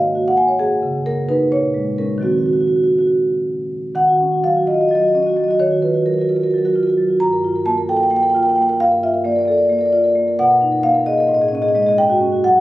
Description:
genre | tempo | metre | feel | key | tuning
classical, contemporary piece for solo marimba | 262 BPM (eighths) | 7/8 | rubato | unclear | A4 = 440 Hz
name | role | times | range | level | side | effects
marimba with soft mallets | solo | 0.0-12.6 s | Gb2 to Bb5 | -14 LUFS | equal | none
room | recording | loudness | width
moderate recital hall reverb, RT60 1.7 s | recorded on a phone in the room, club reverb | -14 LUFS | side -16 dB against mid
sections
0.0-4.0 A section; 4.0-12.6 B section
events
none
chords
0.0 Ab7sus2; 0.6 Gb69; 1.5 Bbm7; 2.2 Ebm6; 4.0 Ebm7; 5.6 Gbmaj7/Eb; 7.2 Gm7; 10.4 Bmaj7; 11.3 Amaj7#11; 12.0 Em69/G (rootless)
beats
0.15 0.37 | 0.60 0.82 1.05 1.28 1.52 1.75 1.98 | 2.23 2.47 2.72 2.97 3.22 3.46 3.71 | 3.95 4.19 4.43 4.66 4.90 5.13 5.36 | 5.59 5.82 6.06 6.29 6.52 6.75 6.98 | 7.21 7.44 7.67 7.89 8.12 8.35 8.58 | 8.80 9.03 9.25 9.48 9.70 9.93 10.16 | 10.38 10.61 10.84 11.07 11.30 11.52 11.75 | 11.97 12.20 12.43

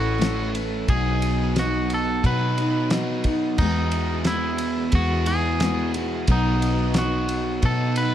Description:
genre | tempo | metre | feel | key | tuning
folk rock and heartland rock | 89 BPM | 4/4 | straight | unclear | A4 = 440 Hz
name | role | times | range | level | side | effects
twangy electric guitar | melody | 0.0-8.1 s | D#4 to B4 | -28 LUFS | equal | digital delay
picked steel-string acoustic guitar | accompaniment | 0.0-8.1 s | B2 to B4 | -29 LUFS | left 4 dB | none
overdriven electric guitar | riff | 0.0-8.1 s | E2 to A4 | -27 LUFS | right 2 dB | none
vintage muted fingered electric bass | bass | 0.0-8.1 s | A1 to B2 | -25 LUFS | equal | none
cloth-damped thuddy drum kit | drums | 0.2-8.1 s | crash cymbal, kick drum, ride cymbal, snare drum | -27 LUFS | equal | none
tonewheel organ | sustained chords | 3.6-8.1 s | E3 to F#4 | -35 LUFS | equal | none
room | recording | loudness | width
light reverb | dark, warm production | -20 LUFS | side -11 dB against mid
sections
0.0-8.1 A section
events
none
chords
0.0 Aadd9; 0.9 B; 3.6 Eadd9; 6.3 B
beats
0.21 | 0.89 1.56 2.24 2.91 | 3.59 4.26 4.94 5.61 | 6.29 6.96 7.63

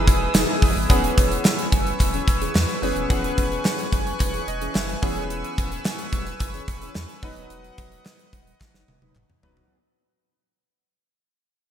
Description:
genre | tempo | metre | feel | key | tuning
1980s-style pop | 109 BPM | 4/4 | straight | E major | A4 = 444 Hz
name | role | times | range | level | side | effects
semi-hollow electric guitar | melody | 0.0-0.6 s | G#4 | -37 LUFS | equal | none
clear baby grand piano | accompaniment | 0.0-9.7 s | E3 to G#5 | -30 LUFS | left 1 dB | wide subtle chorus
raw garage guitar | accompaniment | 0.0-1.4 s | E3 to E4 | -33 LUFS | left 2 dB | overdrive, wide subtle chorus
chorused pulse-width pad | sustained chords | 0.0-9.7 s | B4 to F#6 | -29 LUFS | right 1 dB | none
mellow synth brass | stabs | 0.0-9.8 s | E3 to B4 | -32 LUFS | left 1 dB | chorus
warm sub bass | bass | 0.0-9.6 s | D#1 to E2 | -30 LUFS | equal | none
gated 80s drum kit | drums | 0.1-9.7 s | hi-hat, kick drum, snare drum, tambourine, toms | -21 LUFS | equal | none
group handclap | percussion | 0.3-9.3 s | none | -41 LUFS | left 2 dB | none
room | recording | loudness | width
moderate lush hall reverb, RT60 2.5 s | bright 1980s-style digital production | -20 LUFS | side -10 dB against mid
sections
0.9-9.7 A section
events
band accent 0.0-0.9; fade-out 0.9-9.7; grand piano fill 4.2-5.3; drum fill 8.6-9.7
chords
0.0 Emaj7; 0.9 E6; 5.0 C#m7/E; 7.2 B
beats
0.35 | 0.90 1.45 2.00 2.55 | 3.10 3.65 4.20 4.75 | 5.30 5.85 6.40 6.95 | 7.50 8.05 8.60 9.15

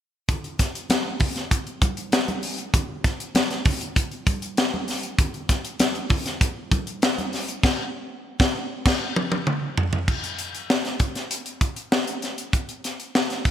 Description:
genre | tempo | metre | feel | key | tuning
pop | 98 BPM | 4/4 | straight | none | none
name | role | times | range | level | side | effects
tight funk drum kit | drums | 0.3-13.5 s | crash cymbal, hi-hat, kick drum, snare drum, toms | -22 LUFS | equal | none
congas | percussion | 0.3-7.3 s | none | -34 LUFS | equal | none
room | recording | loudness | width
moderate concert hall reverb, RT60 2.4 s | big arena sound | -22 LUFS | side -10 dB against mid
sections
0.3-10.1 A section; 10.1-13.5 B section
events
band accent 7.6-10.1; drum fill 8.9-10.1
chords
none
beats
| 0.29 0.90 1.51 2.12 | 2.73 3.35 3.96 4.57 | 5.18 5.79 6.41 7.02 | 7.63 8.24 8.86 9.47 | 10.08 10.69 11.30 11.92 | 12.53 13.14

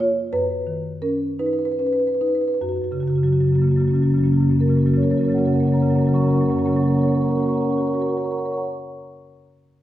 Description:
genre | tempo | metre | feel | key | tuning
classical, contemporary piece for solo marimba | 46-61 BPM (dotted quarters) | 6/8 | rubato | F# major | A4 = 441 Hz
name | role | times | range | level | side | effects
marimba with medium mallets | solo | 0.0-8.7 s | F#2 to C#6 | -18 LUFS | equal | none
room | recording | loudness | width
wet recital hall reverb, RT60 1.5 s | heard from further back in the room | -18 LUFS | side -13 dB against mid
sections
0.0-2.6 A section; 2.6-7.2 B section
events
slowing down 0.0-2.6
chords
0.3 C#11/F#; 2.6 F#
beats
| 0.33 1.40 | 2.62 3.79 | 4.93 6.08

